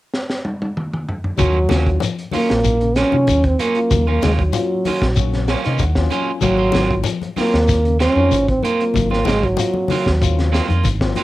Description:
afrobeat; 95 BPM; 4/4; straight; Eb dorian; A4 = 439 Hz
crunchy breakbeat drum kit; drums; 0.1-11.2 s; hi-hat, kick drum, snare drum, toms; -23 LUFS; equal
trombone with bucket mute; melody; 1.4-10.7 s; Gb3 to Db4; -18 LUFS; right 1 dB
electric guitar at the edge of break-up; arpeggios; 1.4-10.9 s; Db3 to F4; -29 LUFS; left 6 dB
electric guitar at the edge of break-up; stabs; 1.4-11.2 s; Gb3 to F4; -23 LUFS; right 6 dB; cassette tape
fingered electric bass; bass; 1.4-11.1 s; Ab1 to C3; -19 LUFS; equal
congas; percussion; 1.4-11.2 s; -26 LUFS; left 6 dB
shekere; percussion; 1.4-11.2 s; -26 LUFS; left 4 dB
barky tine electric piano; accompaniment; 1.7-11.2 s; Gb3 to Ab5; -28 LUFS; left 8 dB; overdrive, cassette tape
light reverb; home recording on cassette; -15 LUFS; side -16 dB against mid
0.0-1.4 A section; 1.4-11.2 B section
drum fill 0.1-1.4; tine electric piano fill 5.2-6.4
0.0 N.C.; 1.4 Ebm9; 6.4 Ab13
0.12 0.75 | 1.38 2.01 2.65 3.27 | 3.91 4.54 5.17 5.80 | 6.43 7.06 7.69 8.32 | 8.95 9.59 10.22 10.85

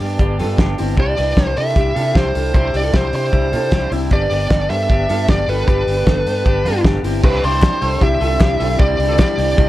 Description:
jangly indie pop; 153 BPM; 4/4; straight; C major; A4 = 445 Hz
electric guitar through a small old amp; accompaniment; 0.0-9.7 s; G2 to G4; -25 LUFS; right 5 dB; tremolo
twelve-string electric guitar; arpeggios; 0.0-9.7 s; C4 to B5; -24 LUFS; left 4 dB; tube saturation, spring reverb
vintage muted fingered electric bass; bass; 0.0-9.7 s; G1 to C3; -21 LUFS; equal
cloth-damped thuddy drum kit; drums; 0.0-9.7 s; crash cymbal, hi-hat, kick drum, snare drum; -17 LUFS; equal
high-gain lead guitar; melody; 1.0-9.7 s; B4 to E5; -20 LUFS; equal; distortion
string machine, violas; sustained chords; 7.2-9.7 s; D3 to E4; -27 LUFS; equal; ensemble chorus
group handclap; percussion; 7.6-9.3 s; -34 LUFS; left 4 dB
light reverb; -14 LUFS; side -15 dB against mid
0.0-7.2 A section; 7.2-9.7 B section
0.0 G; 1.0 Cadd9; 4.1 G; 7.2 Cadd9
0.20 0.59 | 0.98 1.37 1.76 2.15 | 2.54 2.94 3.33 3.72 | 4.11 4.50 4.89 5.28 | 5.67 6.07 6.46 6.85 | 7.24 7.63 8.02 8.41 | 8.80 9.19 9.58

